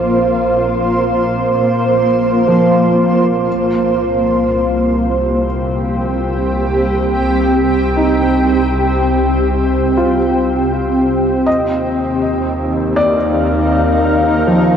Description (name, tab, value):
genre	ambient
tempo	60 BPM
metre	4/4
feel	straight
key	C minor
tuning	A4 = 440 Hz
part	granular cloud pad	sustained chords	0.0-14.8 s	Bb3 to G5	-13 LUFS	equal	built-in reverb
part	felt-muted upright piano	arpeggios	0.0-14.8 s	F3 to Eb5	-19 LUFS	equal	tape echo
part	bright studio double bass section	bass	0.0-14.8 s	Bb1 to Eb2	-21 LUFS	equal	tube saturation
room	wet huge ambient reverb, RT60 8.5 s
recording	worn, warbling old tape, cassette tape, warbly pitch drift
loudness	-12 LUFS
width	side -8 dB against mid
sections	0.0-14.8 A section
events	fade-in on double bass section 0.0-14.8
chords	0.0 Bb5; 3.5 Cm7; 11.5 Ebmaj7